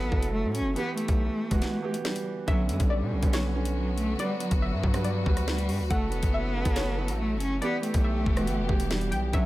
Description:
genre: hip hop, drill.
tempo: 140 BPM.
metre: 4/4.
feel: half-time.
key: B minor.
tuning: A4 = 439 Hz.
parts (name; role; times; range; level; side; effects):
dark cello; melody; 0.0-9.5 s; F#3 to C#4; -31 LUFS; equal; none.
dark concert grand piano; accompaniment; 0.0-9.5 s; D3 to B4; -33 LUFS; right 4 dB; none.
distorted 808-style bass; bass; 0.0-9.5 s; E1 to B2; -30 LUFS; equal; distortion.
drill drum kit; drums; 0.1-9.4 s; hi-hat, kick drum, rim click, snare drum; -28 LUFS; equal; none.
warbly dusty pluck; second line; 2.5-9.5 s; C#5 to G5; -36 LUFS; left 3 dB; chorus, tape echo.
warm studio string section; sustained chords; 2.5-9.5 s; D3 to G4; -38 LUFS; left 2 dB; none.
room: small room ambience.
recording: none.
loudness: -25 LUFS.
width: side -16 dB against mid.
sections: 0.0-2.5 A section; 2.5-9.5 B section.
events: break 1.6-2.5.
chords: 0.0 F#m7; 0.8 Em; 2.5 Bmadd9; 4.2 Gmaj7; 5.9 F#m7; 7.6 Em.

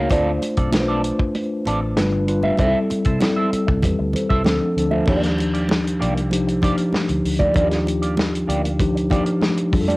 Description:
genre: lush 1970s-style soul.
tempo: 97 BPM.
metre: 4/4.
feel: straight.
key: unclear.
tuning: A4 = 440 Hz.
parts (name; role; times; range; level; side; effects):
mellow tine electric piano; accompaniment; 0.0-10.0 s; F3 to Db5; -20 LUFS; left 1 dB; medium stereo tremolo, cassette tape.
electric guitar at the edge of break-up; riff; 0.0-10.0 s; Bb3 to F5; -24 LUFS; right 2 dB; wah, spring reverb, cassette tape.
vintage muted fingered electric bass; bass; 0.0-10.0 s; G1 to C3; -25 LUFS; equal; none.
warm soul drum kit; drums; 0.1-10.0 s; crash cymbal, hi-hat, kick drum, snare drum; -22 LUFS; equal; cassette tape.
congas; percussion; 0.1-10.0 s; none; -29 LUFS; right 2 dB; none.
room: light reverb.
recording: home recording on cassette.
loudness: -17 LUFS.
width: side -21 dB against mid.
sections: 0.0-5.1 A section; 5.1-10.0 B section.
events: none.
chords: 0.1 Dm7; 2.0 G7; 2.6 C6; 4.5 Dm7; 5.1 Ebmaj9.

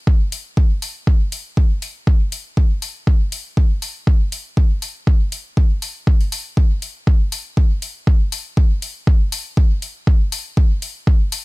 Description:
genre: techno.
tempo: 120 BPM.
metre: 4/4.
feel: swing 54% on 16ths.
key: none.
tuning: none.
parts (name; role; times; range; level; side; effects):
electronic kick drum; drums; 0.1-11.2 s; none; -14 LUFS; equal; none.
electronic hi-hat; drums; 0.3-11.4 s; none; -28 LUFS; left 4 dB; none.
room: little or no reverb.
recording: none.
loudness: -16 LUFS.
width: side -22 dB against mid.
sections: 0.0-11.4 A section.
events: none.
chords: none.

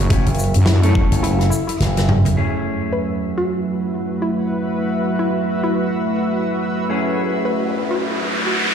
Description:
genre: glitch hop.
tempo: 106 BPM.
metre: 4/4.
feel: swing 58% on 16ths.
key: F# minor.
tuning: A4 = 440 Hz.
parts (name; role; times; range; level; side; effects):
woody wave-folded pluck; melody; 0.0-8.7 s; E4 to B4; -26 LUFS; left 3 dB; chorus, digital delay.
dark analog pad; sustained chords; 0.0-8.7 s; F#3 to C#6; -24 LUFS; right 2 dB; chorus, sidechain pumping.
wobble bass; bass; 0.0-1.1 s; E1 to F#2; -14 LUFS; equal; chorus, overdrive.
granular cloud pad; texture; 0.0-8.7 s; F#4 to E5; -26 LUFS; left 1 dB; built-in reverb, sidechain pumping.
mellow electric guitar; stabs; 0.1-8.7 s; F#2 to A4; -26 LUFS; left 1 dB; sidechain pumping, digital delay.
slap bass with an envelope filter; bass; 0.1-2.3 s; E1 to F#1; -17 LUFS; equal; none.
big rock drum kit; drums; 0.1-2.3 s; hi-hat, rim click, shaker, snare drum, toms; -22 LUFS; right 1 dB; none.
electronic kick drum; drums; 0.1-1.1 s; none; -18 LUFS; equal; overdrive.
riser; sound effects; 7.3-8.7 s; none; -22 LUFS; equal; none.
room: moderate lush hall reverb, RT60 2.2 s.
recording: played on a big sound system in a bare room, large studio reverb.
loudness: -16 LUFS.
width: side -7 dB against mid.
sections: 0.0-2.4 A section; 2.4-8.7 B section.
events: kick drops out 1.2-2.4; drum fill 1.8-2.4; riser 7.3-8.7.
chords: 0.0 F#m7.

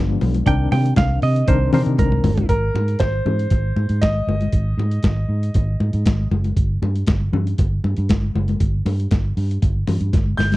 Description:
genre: disco.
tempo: 118 BPM.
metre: 4/4.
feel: straight.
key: unclear.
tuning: A4 = 440 Hz.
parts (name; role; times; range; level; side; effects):
barky reed electric piano; accompaniment; 0.0-2.5 s; Eb3 to Bb4; -24 LUFS; left 6 dB; overdrive, fast tremolo.
vintage muted fingered electric bass; bass; 0.0-10.6 s; F#1 to C3; -19 LUFS; equal; none.
boom bap sampler-style drum kit; drums; 0.2-10.6 s; hi-hat, kick drum, snare drum, toms; -20 LUFS; equal; none.
congas; percussion; 0.2-10.6 s; none; -26 LUFS; left 4 dB; none.
semi-hollow electric guitar; accompaniment; 0.5-2.5 s; Bb4 to G5; -24 LUFS; right 4 dB; none.
clear concert grand piano; melody; 2.5-6.3, 10.4-10.6 s; Bb4 to G6; -26 LUFS; equal; none.
room: little or no reverb.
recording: dry, close 1970s-style studio recording.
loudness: -16 LUFS.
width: side -18 dB against mid.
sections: 0.0-2.5 A section; 2.5-10.6 B section.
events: clean electric guitar solo 0.0-2.5; drum fill 2.0-2.5, 10.1-10.6.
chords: 0.5 Cm9; 2.5 Ab; 6.6 N.C..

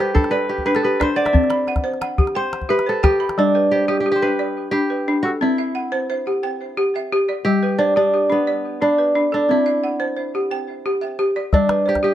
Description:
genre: west african traditional, West African string and xylophone music.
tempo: 118 BPM (dotted quarters).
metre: 12/8.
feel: straight.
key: G major.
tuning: A4 = 440 Hz.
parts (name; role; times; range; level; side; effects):
kora; melody; 0.0-12.1 s; B3 to E5; -19 LUFS; right 1 dB; none.
balafon; arpeggios; 0.0-12.1 s; G3 to B5; -20 LUFS; left 1 dB; tape echo.
calabash; percussion; 0.0-3.4, 11.5-12.0 s; none; -18 LUFS; left 1 dB; none.
room: light reverb.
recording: dark, warm production.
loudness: -17 LUFS.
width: side -12 dB against mid.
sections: 0.0-3.4 A section; 3.4-12.1 B section.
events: kora solo 0.0-3.4.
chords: 0.0 G; 1.3 C; 3.4 G; 5.4 C; 7.5 G; 9.5 C; 11.5 G.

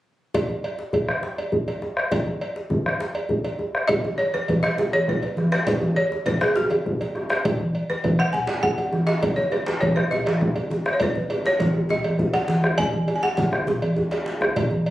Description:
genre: west african traditional, West African drum ensemble.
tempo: 135 BPM (dotted quarters).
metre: 12/8.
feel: straight.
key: B major pentatonic.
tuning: A4 = 443 Hz.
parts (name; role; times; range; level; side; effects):
bombo; percussion; 0.3-14.7 s; none; -25 LUFS; equal; none.
cowbell; percussion; 0.3-14.9 s; none; -30 LUFS; right 1 dB; none.
djembe; percussion; 0.3-14.7 s; none; -30 LUFS; equal; none.
balafon; melody; 3.9-14.4 s; F#4 to G#5; -25 LUFS; equal; none.
congas; percussion; 3.9-14.9 s; none; -26 LUFS; equal; none.
djembe; percussion; 3.9-14.7 s; none; -26 LUFS; right 1 dB; none.
room: moderate studio reverb, RT60 0.5 s.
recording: recorded on a phone in the room, studio reverb.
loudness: -20 LUFS.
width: side -15 dB against mid.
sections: 0.3-3.9 A section; 3.9-14.9 B section.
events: drum fill 10.3-11.0.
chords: none.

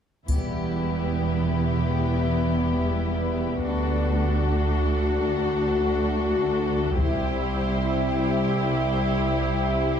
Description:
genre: cinematic, epic orchestral film score.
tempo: free time.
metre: none.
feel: none.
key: E minor.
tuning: A4 = 441 Hz.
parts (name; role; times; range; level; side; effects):
clear symphonic violin section; melody; 0.3-10.0 s; G4 to C5; -35 LUFS; left 5 dB; none.
warm symphonic violin section; second line; 0.3-10.0 s; E4 to G4; -31 LUFS; left 4 dB; none.
rich symphonic viola section; accompaniment; 0.3-10.0 s; B3 to E4; -31 LUFS; right 3 dB; none.
warm French horn section; sustained chords; 0.3-10.0 s; G3 to F#4; -28 LUFS; left 4 dB; none.
clear studio cello section; bass; 0.3-10.0 s; C2 to E2; -29 LUFS; right 2 dB; none.
dark symphonic double bass section; bass; 0.3-10.0 s; E1 to D2; -27 LUFS; right 3 dB; none.
taiko ensemble; drums; 0.3-1.9, 7.0-8.6 s; none; -26 LUFS; left 1 dB; none.
triangle; percussion; 0.3-1.9 s; none; -45 LUFS; equal; none.
room: moderate scoring stage reverb, RT60 1.4 s.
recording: dark, warm production.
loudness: -22 LUFS.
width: side -8 dB against mid.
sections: 0.3-10.0 A section.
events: none.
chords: 0.3 Em; 3.6 D; 7.0 C.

